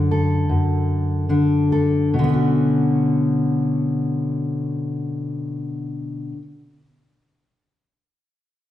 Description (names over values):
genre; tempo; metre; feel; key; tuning
folk; 70-78 BPM; 4/4; straight; B minor; A4 = 440 Hz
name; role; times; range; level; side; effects
fingerpicked steel-string acoustic guitar; accompaniment; 0.0-6.5 s; F#2 to A4; -18 LUFS; left 1 dB; none
room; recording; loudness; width
wet large studio reverb, RT60 1.4 s; dark, warm production, nothing above 10.4 kHz; -18 LUFS; side -12 dB against mid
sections
0.0-2.1 A section; 2.1-5.6 B section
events
slowing down 0.0-2.1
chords
0.0 D/F#; 2.1 Bmadd9